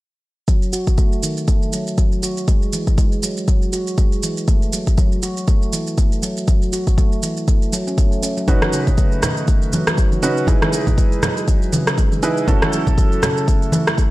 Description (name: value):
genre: afro house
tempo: 120 BPM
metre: 4/4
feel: swing 58% on 16ths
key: F# dorian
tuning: A4 = 440 Hz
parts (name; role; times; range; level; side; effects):
- handpan; arpeggios; 0.5-14.1 s; C#3 to F#4; -23 LUFS; equal; sidechain pumping, low-pass filter, analog delay
- electronic kick drum; drums; 0.5-14.1 s; none; -16 LUFS; equal; none
- electronic shaker and rim click; drums; 0.5-14.1 s; none; -24 LUFS; right 1 dB; none
- felt-muted upright piano; stabs; 8.5-14.1 s; C#4 to B4; -22 LUFS; right 2 dB; sidechain pumping, analog delay
- congas; percussion; 8.5-14.0 s; none; -23 LUFS; right 1 dB; none
room: little or no reverb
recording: dry, gritty hardware recording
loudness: -15 LUFS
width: side -18 dB against mid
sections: 0.5-14.1 A section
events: filter sweep on handpan 0.5-14.1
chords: 0.5 D#dim (rootless); 2.5 E; 4.5 F#m7; 8.5 Badd9; 10.5 Emaj7; 12.5 F#m7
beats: | 0.48 0.98 1.48 1.98 | 2.48 2.98 3.48 3.98 | 4.48 4.98 5.48 5.98 | 6.48 6.98 7.48 7.98 | 8.48 8.98 9.48 9.98 | 10.48 10.98 11.48 11.98 | 12.48 12.98 13.48 13.98